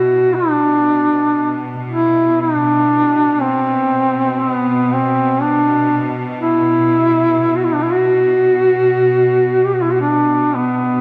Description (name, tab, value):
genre	caucasian folk, Caucasian lament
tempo	56-61 BPM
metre	4/4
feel	rubato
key	B phrygian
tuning	A4 = 443 Hz
part	warm duduk	melody	0.0-11.0 s	B3 to G4	-16 LUFS	equal	none
part	bright studio cello section	drone	0.0-11.0 s	B2	-26 LUFS	equal	none
room	moderate church reverb, RT60 2.7 s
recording	dark, warm production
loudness	-15 LUFS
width	mono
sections	0.0-11.0 A section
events	none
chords	none